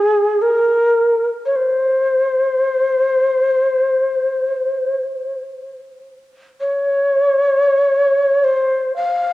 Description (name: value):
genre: world meditative, free-time meditation music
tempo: free time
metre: none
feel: none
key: unclear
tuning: A4 = 442 Hz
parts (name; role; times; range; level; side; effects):
- mellow Native American-style cedar flute; solo; 0.0-9.3 s; Ab4 to F5; -14 LUFS; left 1 dB; cassette tape, analog delay
room: wet spring reverb, RT60 1.8 s, small room ambience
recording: home recording on cassette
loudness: -14 LUFS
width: side -17 dB against mid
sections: 0.0-9.3 A section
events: none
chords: none